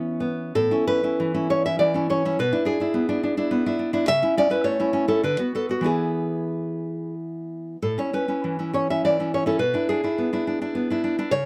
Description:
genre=romantic piece for solo classical guitar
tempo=80-107 BPM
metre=3/4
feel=rubato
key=A major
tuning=A4 = 441 Hz
part: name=nylon-string guitar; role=solo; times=0.0-11.5 s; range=A2 to E5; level=-24 LUFS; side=equal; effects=none
room=light reverb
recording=none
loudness=-24 LUFS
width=mono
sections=0.6-11.5 A section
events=none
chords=0.0 E5; 0.6 A; 2.4 E7/B; 4.1 A/C#; 5.2 Bm/D; 5.9 E; 7.8 A; 9.6 E7/B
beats=| 0.55 1.19 1.80 | 2.37 2.94 3.50 | 4.07 4.65 5.23 | 5.86 6.53 7.18 | 7.82 8.42 9.01 | 9.59 10.17 10.74 | 11.31

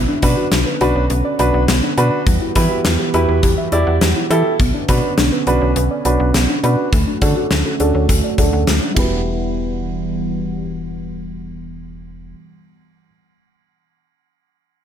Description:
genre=synth-pop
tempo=103 BPM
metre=4/4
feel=straight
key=E dorian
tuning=A4 = 440 Hz
part: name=chorused pulse-width pad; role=sustained chords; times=0.0-12.3 s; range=D3 to F#5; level=-24 LUFS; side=right 3 dB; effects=low-pass filter
part: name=soft round pluck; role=arpeggios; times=0.0-13.1 s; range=G3 to F#5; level=-24 LUFS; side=left 3 dB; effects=chorus, low-pass filter, ping-pong delay
part: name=slap-like FM bass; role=bass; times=0.0-12.3 s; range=E1 to E3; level=-19 LUFS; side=equal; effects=none
part: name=warm baby grand piano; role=accompaniment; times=0.2-13.1 s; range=D4 to D5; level=-20 LUFS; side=right 1 dB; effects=low-pass filter
part: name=gated 80s drum kit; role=drums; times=0.2-9.1 s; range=hi-hat, kick drum, ride cymbal, snare drum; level=-18 LUFS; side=equal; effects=none
room=light reverb, small room reverb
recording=none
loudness=-14 LUFS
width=side -9 dB against mid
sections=0.0-9.3 A section; 9.3-11.6 B section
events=filter sweep 0.0-9.3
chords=0.0 Bmadd9; 2.3 Emadd9; 4.6 Bmadd9; 6.9 Dmaj7; 9.0 Emadd9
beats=0.52 1.10 1.68 | 2.27 2.85 3.43 4.01 | 4.60 5.18 5.76 6.34 | 6.93 7.51 8.09 8.67 | 9.26 9.84 10.42 11.00

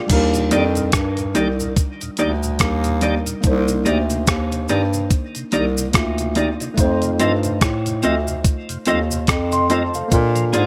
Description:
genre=lovers rock reggae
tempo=72 BPM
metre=4/4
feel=swing 59% on 16ths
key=unclear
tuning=A4 = 440 Hz
part: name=tine electric piano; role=accompaniment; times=0.0-10.7 s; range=G3 to C6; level=-26 LUFS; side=equal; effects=lush chorus, dub echo
part: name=mellow bass clarinet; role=bass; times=0.1-10.7 s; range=C2 to Bb2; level=-23 LUFS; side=equal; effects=none
part: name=gated 80s digital drum machine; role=drums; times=0.1-10.7 s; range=crash cymbal, hi-hat, kick drum, rim click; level=-22 LUFS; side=equal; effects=none
part: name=cabasa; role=percussion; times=0.1-10.7 s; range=none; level=-33 LUFS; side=equal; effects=none
part: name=tonewheel organ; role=accompaniment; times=0.3-10.7 s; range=Eb2 to Eb4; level=-33 LUFS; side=equal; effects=slow rotary speaker, dub echo
part: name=mellow electric guitar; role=stabs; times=0.5-10.7 s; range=Bb3 to Eb5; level=-23 LUFS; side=equal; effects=none
room=light reverb, digital ambience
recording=none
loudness=-19 LUFS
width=mono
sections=0.1-10.7 A section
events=none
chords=0.1 Cm9; 6.8 F7; 10.1 Bb7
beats=| 0.10 0.93 1.77 2.60 | 3.44 4.27 5.11 5.94 | 6.78 7.62 8.45 9.29 | 10.12

